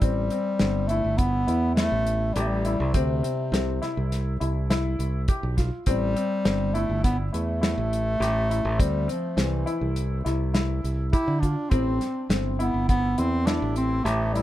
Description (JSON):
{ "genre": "progressive instrumental, band music in an uneven meter", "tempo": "102 BPM", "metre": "5/4", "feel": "straight", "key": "A minor", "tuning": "A4 = 440 Hz", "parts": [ { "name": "warm bass clarinet", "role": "melody", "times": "0.0-14.4 s", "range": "C3 to E4", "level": "-27 LUFS", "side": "equal", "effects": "tape echo" }, { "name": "warm baby grand piano", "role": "arpeggios", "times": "0.0-14.4 s", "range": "C4 to G4", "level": "-31 LUFS", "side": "left 4 dB", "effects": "tape echo" }, { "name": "fingered electric bass", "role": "bass", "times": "0.0-14.4 s", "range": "G1 to D3", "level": "-26 LUFS", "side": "equal", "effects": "none" }, { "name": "modern studio drum kit", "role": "drums", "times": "0.0-14.4 s", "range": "hi-hat, kick drum, snare drum", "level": "-26 LUFS", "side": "equal", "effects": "none" } ], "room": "light reverb", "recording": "none", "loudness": "-22 LUFS", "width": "side -14 dB against mid", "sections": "0.0-14.4 A section", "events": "none", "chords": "0.0 Am7; 2.9 D7sus2 (rootless); 5.9 Am7; 8.8 D7sus2; 11.7 Am7" }